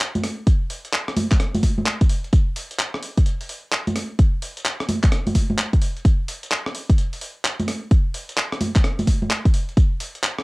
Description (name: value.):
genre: UK garage.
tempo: 129 BPM.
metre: 4/4.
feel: swing 64% on 16ths.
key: none.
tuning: none.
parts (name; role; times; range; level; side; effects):
breakbeat sampler-style drum kit; drums; 0.0-10.4 s; congas, handclaps, hi-hat, rim click; -23 LUFS; equal; cassette tape.
electronic kick drum; drums; 0.5-9.9 s; none; -17 LUFS; equal; cassette tape.
room: little or no reverb.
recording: home recording on cassette.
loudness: -19 LUFS.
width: side -24 dB against mid.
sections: 0.0-10.4 A section.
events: none.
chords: none.